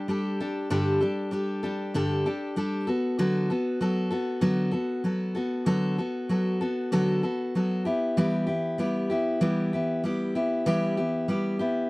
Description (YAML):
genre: rock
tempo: 96 BPM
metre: 4/4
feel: straight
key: unclear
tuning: A4 = 440 Hz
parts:
  - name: picked steel-string acoustic guitar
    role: solo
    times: 0.0-11.9 s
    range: G2 to A4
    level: -24 LUFS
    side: equal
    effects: none
room: light reverb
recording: dry, close 1970s-style studio recording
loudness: -24 LUFS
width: side -22 dB against mid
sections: 0.0-11.9 A section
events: none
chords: 0.0 Gsus2; 2.9 D6; 7.8 Em